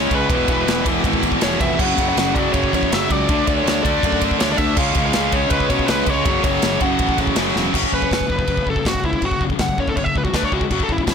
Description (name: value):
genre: heavy metal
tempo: 162 BPM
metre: 4/4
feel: straight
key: F# minor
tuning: A4 = 441 Hz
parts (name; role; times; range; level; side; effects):
- high-gain lead guitar; melody; 0.0-11.1 s; E4 to F#5; -23 LUFS; equal; distortion, tape echo
- distorted electric guitar; riff; 0.0-8.2 s; E2 to D4; -24 LUFS; equal; distortion
- high-gain distorted guitar; riff; 0.0-11.1 s; E2 to D4; -23 LUFS; left 14 dB; distortion
- high-gain distorted guitar; riff; 0.0-8.2 s; E2 to D4; -24 LUFS; right 16 dB; distortion
- fuzz fingered electric bass; bass; 0.0-11.1 s; E1 to B2; -26 LUFS; right 1 dB; overdrive
- modern studio drum kit; drums; 0.1-11.1 s; crash cymbal, kick drum, ride cymbal, snare drum; -21 LUFS; right 1 dB; none
room: light reverb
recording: blown-out, overdriven recording, overdrive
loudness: -16 LUFS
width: side -6 dB against mid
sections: 0.0-7.7 A section; 7.7-11.1 B section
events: drum fill 7.6; lead electric guitar solo 7.7-11.1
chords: 0.3 E; 1.8 F#5; 3.3 D; 4.8 C#5; 6.3 F#m; 7.7 F#5; 10.3 D5; 10.5 C#5